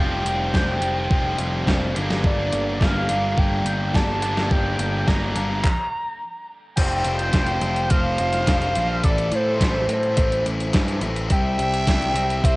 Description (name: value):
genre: indie rock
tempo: 106 BPM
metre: 4/4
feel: straight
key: unclear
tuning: A4 = 440 Hz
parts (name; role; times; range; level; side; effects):
- overdriven synth lead; melody; 0.0-12.6 s; C5 to Bb5; -25 LUFS; equal; distortion, chorus, tape echo
- distorted electric guitar; riff; 0.0-12.6 s; G2 to F4; -28 LUFS; left 2 dB; overdrive
- thick fuzz guitar; riff; 0.0-5.6 s; G2 to F4; -29 LUFS; right 2 dB; distortion, lush chorus, tape echo
- fuzz picked electric bass; bass; 0.0-12.6 s; F1 to A2; -25 LUFS; equal; overdrive
- gated 80s digital drum machine; drums; 0.3-12.6 s; crash cymbal, handclaps, hi-hat, kick drum, snare drum; -22 LUFS; equal; gated reverb, gated reverb snare, overdrive
- growling trumpet; second line; 6.8-12.6 s; A4 to E5; -30 LUFS; right 2 dB; none
room: light reverb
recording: worn, warbling old tape, cassette tape, warbly pitch drift, nothing above 10.4 kHz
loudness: -19 LUFS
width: side -22 dB against mid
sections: 0.0-6.8 A section; 6.8-12.6 B section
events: stop 5.6-6.8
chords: 0.0 Fsus2; 2.0 Gm; 6.8 Fsus2; 9.0 Am; 11.3 C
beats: 0.54 1.11 1.68 | 2.24 2.81 3.38 3.95 | 4.51 5.08 5.65 6.21 | 6.78 7.34 7.91 8.47 | 9.04 9.60 10.17 10.73 | 11.30 11.86 12.43